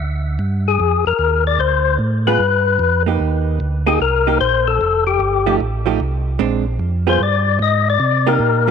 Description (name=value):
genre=soul jazz organ trio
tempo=150 BPM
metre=4/4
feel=swing 66% on 8ths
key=unclear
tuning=A4 = 440 Hz
part: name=mellow tonewheel organ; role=bass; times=0.0-8.7 s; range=F1 to C3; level=-19 LUFS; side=right 1 dB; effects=slow rotary speaker
part: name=percussive tonewheel organ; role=melody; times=0.7-8.7 s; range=G4 to Eb5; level=-17 LUFS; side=left 8 dB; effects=slow rotary speaker, overdrive
part: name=vintage hollow-body jazz guitar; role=accompaniment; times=2.3-8.7 s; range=F3 to Ab4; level=-21 LUFS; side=right 13 dB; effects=none
room=moderate plate reverb, RT60 3.1 s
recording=1960s-style stereo with parts hard left and right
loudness=-14 LUFS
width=side -7 dB against mid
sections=0.0-8.7 A section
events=none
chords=0.0 Bb7; 1.6 Dm7; 2.4 G7; 3.2 Cm7; 4.8 F9; 6.4 Bb9; 7.2 G5; 8.0 Cm7